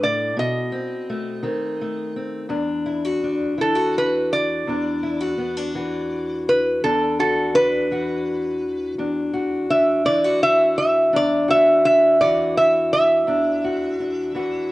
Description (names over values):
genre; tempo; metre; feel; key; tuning
acoustic country blues, solo or duo; 56 BPM (dotted quarters); 12/8; straight; unclear; A4 = 440 Hz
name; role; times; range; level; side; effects
metal-body resonator slide guitar; melody; 0.0-14.7 s; A4 to E5; -17 LUFS; right 1 dB; cassette tape, plate reverb
fingerpicked steel-string acoustic guitar; accompaniment; 0.0-14.7 s; E2 to F#4; -23 LUFS; left 1 dB; cassette tape, plate reverb
room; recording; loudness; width
moderate studio ambience, RT60 0.5 s; home recording on cassette; -18 LUFS; side -18 dB against mid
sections
0.0-2.5 A section; 2.5-14.7 B section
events
resonator guitar played with a steel bar solo 2.5-14.7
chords
0.4 B7b9; 2.5 E7sus2